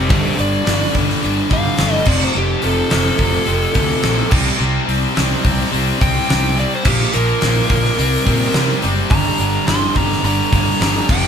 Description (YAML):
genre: hard rock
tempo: 106 BPM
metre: 4/4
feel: straight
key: G minor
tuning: A4 = 440 Hz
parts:
  - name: biting lead guitar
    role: melody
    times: 0.0-11.3 s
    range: G4 to C6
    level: -21 LUFS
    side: right 2 dB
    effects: overdrive
  - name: crunchy overdriven guitar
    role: riff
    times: 0.0-11.3 s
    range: F2 to C4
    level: -22 LUFS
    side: right 8 dB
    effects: none
  - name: distorted electric guitar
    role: riff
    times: 0.0-11.3 s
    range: F2 to C4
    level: -20 LUFS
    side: left 8 dB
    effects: overdrive
  - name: fuzz fingered electric bass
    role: bass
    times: 0.0-11.3 s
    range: F1 to C3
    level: -20 LUFS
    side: equal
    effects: overdrive
  - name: gated 80s drum kit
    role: drums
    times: 0.1-11.2 s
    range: crash cymbal, hi-hat, kick drum, snare drum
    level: -19 LUFS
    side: equal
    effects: none
room: moderate stone room reverb, RT60 0.9 s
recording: band playing live in one room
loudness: -14 LUFS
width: side -7 dB against mid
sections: 0.0-11.3 A section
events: lead electric guitar solo 0.0-11.3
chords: 0.1 G5; 2.1 F; 4.3 C5; 6.9 Bb5; 8.0 C5; 9.1 Gm